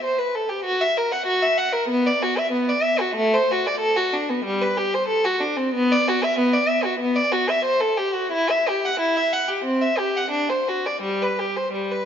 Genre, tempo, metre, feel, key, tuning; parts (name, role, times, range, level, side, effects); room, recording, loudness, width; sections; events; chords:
classical, baroque-style suite movement for unaccompanied violin; 84-98 BPM; 4/4; rubato; G major from 3.2 s; A4 = 440 Hz
warm violin; solo; 0.0-12.1 s; G3 to F#5; -19 LUFS; equal
moderate concert hall reverb, RT60 1.9 s; nothing above 7.5 kHz; -19 LUFS; side -8 dB against mid
0.0-12.1 A section